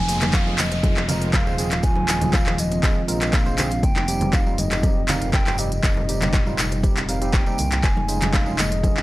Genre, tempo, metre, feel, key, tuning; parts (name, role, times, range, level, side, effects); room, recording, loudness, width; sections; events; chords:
afro house; 120 BPM; 4/4; straight; F minor; A4 = 441 Hz
mellow hollow jazz flute; melody; 0.0-9.0 s; Eb5 to Ab5; -29 LUFS; left 1 dB; tape echo
warm analog pad; sustained chords; 0.4-9.0 s; C3 to F4; -34 LUFS; equal
smooth synth bass; bass; 0.0-9.0 s; Eb1 to C2; -27 LUFS; equal; sidechain pumping
downlifter; sound effects; 0.0-3.8 s; -33 LUFS; equal
marimba with soft mallets; arpeggios; 0.1-9.0 s; G2 to F4; -29 LUFS; equal; sidechain pumping, tape echo
bell-like tine electric piano; stabs; 0.1-9.0 s; G3 to C5; -31 LUFS; right 3 dB; analog chorus, sidechain pumping, tape echo
afro-pop drum kit; drums; 0.1-9.0 s; handclaps, hi-hat; -25 LUFS; equal
tambourine; percussion; 0.1-8.9 s; -37 LUFS; right 1 dB
congas; percussion; 0.2-8.9 s; -29 LUFS; right 1 dB
electronic kick drum; drums; 0.3-8.9 s; -20 LUFS; equal; overdrive
small room ambience; dry, gritty hardware recording; -18 LUFS; side -17 dB against mid
0.0-9.0 A section
0.0 Fm; 3.8 Cm/F; 7.8 Dbadd9